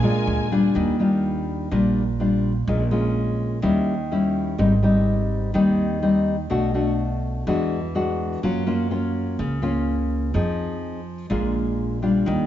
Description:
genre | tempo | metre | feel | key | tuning
bossa nova | 125 BPM | 4/4 | straight | unclear | A4 = 441 Hz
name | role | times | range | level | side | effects
nylon-string guitar | accompaniment | 0.0-12.5 s | Ab2 to Ab4 | -21 LUFS | left 1 dB | none
warm studio string section | sustained chords | 0.0-0.7 s | D4 to Ab5 | -30 LUFS | equal | none
upright bass | bass | 0.3-12.5 s | Ab1 to Gb2 | -26 LUFS | right 2 dB | none
room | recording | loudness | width
moderate scoring stage reverb, RT60 1.8 s | recorded in a church or concert hall, nothing above 7.6 kHz | -20 LUFS | side -11 dB against mid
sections
0.7-12.5 A section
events
none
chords
0.0 Bb7; 0.7 Ebmaj9; 2.7 Bbm7; 3.6 Eb7b9; 4.6 Abmaj7; 6.5 Bm7; 7.5 E9; 8.4 Gbmaj7; 10.3 Fm7; 11.3 Bb7

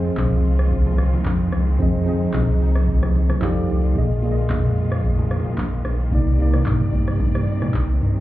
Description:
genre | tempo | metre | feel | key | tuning
amapiano | 111 BPM | 4/4 | swing 55% on 16ths | F dorian | A4 = 445 Hz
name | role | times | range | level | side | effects
mellow tine electric piano | accompaniment | 0.0-8.2 s | Bb2 to F5 | -23 LUFS | right 1 dB | medium stereo tremolo
warm studio string section | sustained chords | 0.0-8.2 s | C3 to D5 | -31 LUFS | left 3 dB | sidechain pumping
sub bass with octave | bass | 0.0-8.2 s | Bb1 to G2 | -20 LUFS | equal | none
booming analog drum machine | drums | 0.1-8.2 s | handclaps, kick drum, rim click, shaker, toms | -23 LUFS | equal | none
bongos and congas | percussion | 0.2-8.2 s | none | -31 LUFS | left 2 dB | none
room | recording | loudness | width
little or no reverb | heard muffled through a wall, club reverb, EQ | -17 LUFS | side -15 dB against mid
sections
0.0-8.2 A section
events
tine electric piano fill 3.1-4.0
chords
0.0 Fm7; 3.4 F13; 4.0 Bb7sus4; 6.1 Cm9

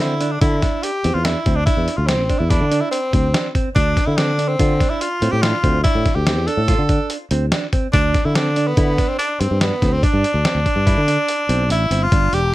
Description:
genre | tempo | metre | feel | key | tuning
progressive instrumental, band music in an uneven meter | 144 BPM | 5/4 | straight | unclear | A4 = 440 Hz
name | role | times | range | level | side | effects
bright tenor saxophone | melody | 0.0-12.5 s | B3 to A4 | -21 LUFS | equal | none
mellow electric guitar | arpeggios | 0.0-12.4 s | C4 to F4 | -26 LUFS | right 5 dB | ping-pong delay
sustaining fretless electric bass | bass | 0.0-12.5 s | E1 to D3 | -19 LUFS | equal | none
lo-fi sampler-style drum kit | drums | 0.2-12.4 s | hi-hat, kick drum, snare drum | -20 LUFS | equal | none
room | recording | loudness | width
light reverb | none | -15 LUFS | side -16 dB against mid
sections
0.0-12.1 A section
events
kick and snare drop out 11.3-12.1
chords
0.0 C; 3.8 F/D (rootless); 7.9 Em7/D (rootless)

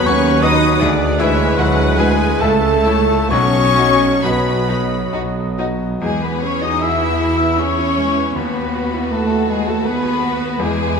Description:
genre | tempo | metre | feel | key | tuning
classical, romantic movement for piano and orchestra | 64-84 BPM | 3/4 | rubato | E major | A4 = 440 Hz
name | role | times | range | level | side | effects
clear baby grand piano | melody | 0.0-11.0 s | B1 to D#6 | -21 LUFS | left 2 dB | none
rich studio violin section | melody | 0.0-11.0 s | E4 to D#6 | -26 LUFS | left 3 dB | none
bright clarinet | second line | 0.0-5.1 s | E4 to D#5 | -25 LUFS | left 2 dB | none
bright small flute group | second line | 0.0-11.0 s | E5 to E6 | -23 LUFS | left 6 dB | none
warm oboe | second line | 0.0-5.6 s | B4 to E5 | -26 LUFS | right 1 dB | none
dark bassoon | accompaniment | 0.0-5.6 s | F#3 to A3 | -24 LUFS | right 4 dB | none
rich studio viola section | accompaniment | 0.0-11.0 s | G#3 to D5 | -25 LUFS | right 3 dB | none
warm French horn section | sustained chords | 0.0-11.0 s | E3 to E4 | -22 LUFS | left 3 dB | none
rich studio cello section | bass | 0.0-11.0 s | E3 to E4 | -24 LUFS | right 2 dB | none
rich studio violin section | second line | 0.1-11.0 s | D#4 to E5 | -27 LUFS | left 3 dB | none
mellow tuba | bass | 0.1-5.9 s | B1 to D#2 | -24 LUFS | right 4 dB | none
rich studio double bass section | bass | 0.1-11.0 s | B1 to E2 | -23 LUFS | right 2 dB | none
room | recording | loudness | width
wet concert hall reverb, RT60 2.4 s | minimal, uncompressed stereo recording | -14 LUFS | side -6 dB against mid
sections
0.0-6.0 A section; 6.0-11.0 B section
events
none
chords
0.0 B7/D#; 0.8 E7/D; 2.4 A/C#; 3.3 B; 6.0 E; 8.4 B/D#

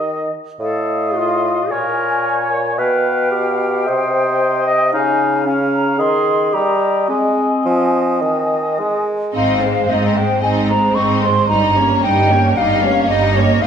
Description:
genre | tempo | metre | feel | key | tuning
classical, dramatic, fast romantic movement for symphony orchestra | 111 BPM | 4/4 | rubato | Ab major | A4 = 441 Hz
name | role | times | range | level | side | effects
concert flute | second line | 0.0-13.7 s | Eb5 to Db6 | -20 LUFS | left 1 dB | none
warm clarinet | second line | 0.0-8.8 s | C4 to Eb5 | -19 LUFS | left 2 dB | none
warm oboe | second line | 0.0-9.0 s | Db5 to F5 | -22 LUFS | equal | none
clear bassoon | accompaniment | 0.0-9.4 s | A2 to Ab3 | -20 LUFS | right 2 dB | none
warm symphonic violin section | melody | 9.3-13.7 s | C5 to Eb5 | -24 LUFS | left 4 dB | none
rich symphonic violin section | second line | 9.3-13.7 s | C4 to Eb4 | -20 LUFS | equal | none
rich symphonic cello section | bass | 9.3-13.7 s | G2 to Ab2 | -21 LUFS | right 2 dB | none
rich symphonic double bass section | bass | 9.3-13.7 s | G1 to Ab1 | -22 LUFS | right 3 dB | none
rich symphonic viola section | accompaniment | 9.4-13.7 s | G3 to C4 | -21 LUFS | right 1 dB | none
room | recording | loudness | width
wet recital hall reverb, RT60 1.4 s | minimal, uncompressed stereo recording | -14 LUFS | side -8 dB against mid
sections
0.0-9.4 A section; 9.4-13.7 A section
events
none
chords
0.0 N.C.; 0.6 F7/A; 1.7 Bbm7; 2.8 G7/B; 3.9 Cm; 4.9 Db; 6.0 Ab/Eb; 6.5 Eb/G; 7.1 Ab; 11.5 Eb7/G

